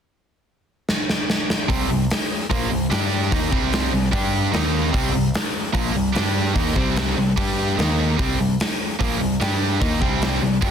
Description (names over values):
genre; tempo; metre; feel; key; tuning
hard rock; 148 BPM; 4/4; straight; C minor; A4 = 438 Hz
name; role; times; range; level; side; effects
gated 80s drum kit; drums; 0.9-10.7 s; hi-hat, kick drum, snare drum; -23 LUFS; equal; none
cranked stack guitar; riff; 1.7-10.7 s; Bb2 to G4; -24 LUFS; right 10 dB; overdrive
overdriven electric guitar; riff; 1.7-10.7 s; Bb2 to G4; -25 LUFS; left 11 dB; none
growling picked electric bass; bass; 1.7-10.7 s; Bb1 to G2; -25 LUFS; equal; overdrive
room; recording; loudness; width
light reverb; dense, heavily limited modern master; -18 LUFS; side -8 dB against mid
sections
0.1-1.7 A section; 1.7-10.7 B section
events
drum fill 0.9-1.7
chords
0.1 N.C.; 1.7 C5; 2.9 G5; 3.3 Cm; 4.1 G5; 4.5 Eb5; 4.9 C5; 6.2 G5; 6.6 Cm; 7.4 G5; 7.8 Eb5; 8.2 C5; 9.4 G5; 9.8 Cm